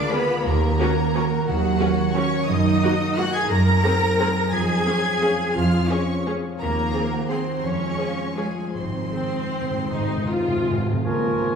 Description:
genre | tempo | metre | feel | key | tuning
classical | 145-190 BPM | 3/4 | rubato | Db major | A4 = 441 Hz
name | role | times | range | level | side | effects
rich chamber violin section | melody | 0.0-11.6 s | Bb4 to Bb6 | -30 LUFS | left 2 dB | none
rich symphonic violin section | second line | 0.0-11.5 s | Db4 to Bb5 | -29 LUFS | left 2 dB | none
concert harp | arpeggios | 0.0-11.6 s | F2 to A#5 | -26 LUFS | left 1 dB | none
warm symphonic cello section | bass | 0.0-11.4 s | Db3 to Bb4 | -27 LUFS | right 2 dB | none
rich symphonic viola section | accompaniment | 0.1-11.5 s | F3 to G#4 | -28 LUFS | equal | none
rich symphonic double bass section | bass | 0.4-11.4 s | Ab1 to Gb2 | -25 LUFS | right 3 dB | none
timpani | percussion | 8.7-11.0 s | Ab2 | -28 LUFS | right 2 dB | none
clear oboe | second line | 11.1-11.6 s | Ab5 | -33 LUFS | left 3 dB | none
mellow clarinet | second line | 11.1-11.6 s | Bb4 | -25 LUFS | right 3 dB | none
silver concert flute | second line | 11.1-11.6 s | Db6 | -31 LUFS | right 6 dB | none
warm bassoon | accompaniment | 11.1-11.6 s | F3 | -29 LUFS | right 3 dB | none
dark French horn section | sustained chords | 11.1-11.6 s | Bb3 | -27 LUFS | left 5 dB | none
room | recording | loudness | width
wet concert hall reverb, RT60 2.5 s | small room ambience | -19 LUFS | side -6 dB against mid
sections
0.0-11.1 A section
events
timpani fill 8.7-11.1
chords
0.4 D#m7; 2.5 Ebm/Gb; 3.5 Ab7/Gb; 4.5 Db/F; 6.6 Ab7/Eb; 7.6 Db/F; 8.7 Ab; 11.1 Db

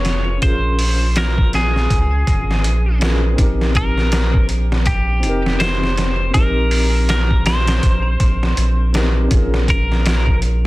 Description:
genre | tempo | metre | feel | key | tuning
trip hop | 81 BPM | 4/4 | swing 59% on 16ths | unclear | A4 = 443 Hz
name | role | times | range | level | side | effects
twelve-string electric guitar | melody | 0.0-10.4 s | G4 to Db5 | -23 LUFS | equal | tape echo
felt-muted upright piano | accompaniment | 0.0-10.7 s | C4 to Bb4 | -25 LUFS | left 1 dB | tremolo, tape echo
round analog bass | bass | 0.0-10.7 s | F1 to Db2 | -17 LUFS | equal | none
trip hop sampler-style drum kit | drums | 0.0-10.6 s | hi-hat, kick drum, snare drum | -18 LUFS | equal | none
room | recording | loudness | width
little or no reverb | dense, heavily limited modern master | -14 LUFS | side -19 dB against mid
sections
0.0-10.7 A section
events
none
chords
0.0 Bbm7; 3.4 Cm7; 9.3 Bbm7

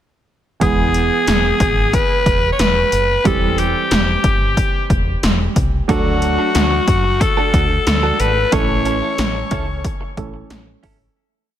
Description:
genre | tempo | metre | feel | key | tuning
1980s-style pop | 91 BPM | 4/4 | straight | E mixolydian | A4 = 440 Hz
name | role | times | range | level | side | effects
raspy alto saxophone | melody | 0.6-9.8 s | F#4 to C#5 | -18 LUFS | left 2 dB | ping-pong delay, slapback echo
clear concert grand piano | accompaniment | 0.6-11.2 s | E3 to A4 | -23 LUFS | right 4 dB | slapback echo
woody fretless electric bass | bass | 0.6-11.1 s | E1 to F#2 | -20 LUFS | equal | none
80s electronic pad drums | drums | 0.6-11.0 s | hi-hat, kick drum, snare drum | -18 LUFS | equal | overdrive
direct-recorded clean electric guitar | riff | 5.9-11.0 s | C#4 to A4 | -25 LUFS | right 5 dB | lush chorus, ping-pong delay, slapback echo
room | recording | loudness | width
moderate concert hall reverb, RT60 2.2 s | big arena sound | -14 LUFS | side -11 dB against mid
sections
0.6-11.2 verse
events
fade-out 8.5-11.2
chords
0.6 E; 3.3 C/E; 5.9 D; 8.5 A

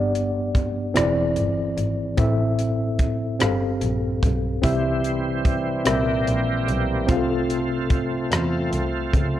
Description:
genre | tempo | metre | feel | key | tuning
slow gospel | 49 BPM (dotted quarters) | 6/8 | straight | C major | A4 = 440 Hz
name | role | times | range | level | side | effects
tine electric piano | accompaniment | 0.0-9.4 s | G2 to F5 | -23 LUFS | left 1 dB | overdrive, fast stereo tremolo
warm double bass | bass | 0.0-9.4 s | E1 to E2 | -27 LUFS | equal | none
crisp fusion drum kit | drums | 0.2-9.3 s | hi-hat, kick drum, rim click | -24 LUFS | equal | none
bright tonewheel organ | sustained chords | 4.6-9.4 s | E3 to G4 | -27 LUFS | right 2 dB | slow rotary speaker, overdrive, chorus vibrato
room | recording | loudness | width
light reverb, small room ambience | worn, warbling old tape, cassette tape, warbly pitch drift | -20 LUFS | side -12 dB against mid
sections
0.0-9.4 A section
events
none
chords
0.0 G; 1.0 E7b13; 2.2 Am; 3.4 G9sus4; 4.6 C; 5.9 C7; 7.1 F/C

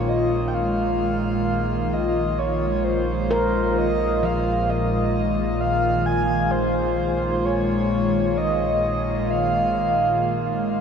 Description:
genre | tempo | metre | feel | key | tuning
ambient | 65 BPM | 4/4 | straight | unclear | A4 = 440 Hz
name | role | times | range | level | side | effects
breathy flute-like synth lead | melody | 0.0-10.7 s | C5 to Ab5 | -24 LUFS | equal | lush chorus, shimmer reverb, ping-pong delay
glassy FM pad | sustained chords | 0.0-10.8 s | Bb2 to F4 | -24 LUFS | left 1 dB | ensemble chorus, built-in reverb, shimmer reverb
handpan | arpeggios | 0.0-7.8 s | F3 to Bb4 | -29 LUFS | equal | shimmer reverb, ping-pong delay
deep rumbling drone | bass | 0.0-10.8 s | Bb1 | -30 LUFS | equal | built-in reverb
pedal harmonium | drone | 0.0-10.8 s | Bb3 to F4 | -29 LUFS | right 1 dB | none
room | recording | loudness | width
wet huge ambient reverb, RT60 8.6 s | none | -19 LUFS | side -7 dB against mid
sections
0.0-10.8 A section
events
none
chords
0.0 Dbadd9/Bb

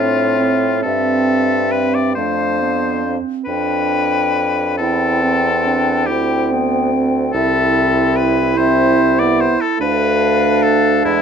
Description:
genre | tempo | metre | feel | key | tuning
classical, slow romantic movement for wind quintet | 44-49 BPM (dotted quarters) | 6/8 | rubato | C major, A minor from 7.3 s | A4 = 440 Hz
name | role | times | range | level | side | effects
mellow hollow concert flute | melody | 0.0-11.2 s | E5 to G5 | -21 LUFS | left 8 dB | none
bright oboe | second line | 0.0-11.2 s | E4 to D5 | -19 LUFS | left 3 dB | none
clear French horn | accompaniment | 0.0-11.2 s | G#3 to D4 | -21 LUFS | equal | none
dark clarinet | accompaniment | 0.0-11.2 s | A3 to E4 | -20 LUFS | right 12 dB | none
clear bassoon | bass | 0.0-11.2 s | C2 to A2 | -20 LUFS | right 2 dB | none
room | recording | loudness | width
moderate large studio reverb, RT60 0.9 s | dark, warm production | -13 LUFS | side -7 dB against mid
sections
0.0-11.2 A section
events
none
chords
0.0 Am; 2.2 Dm7/F; 3.5 G7/F; 4.8 C/E; 7.3 Am/C; 9.8 Dm

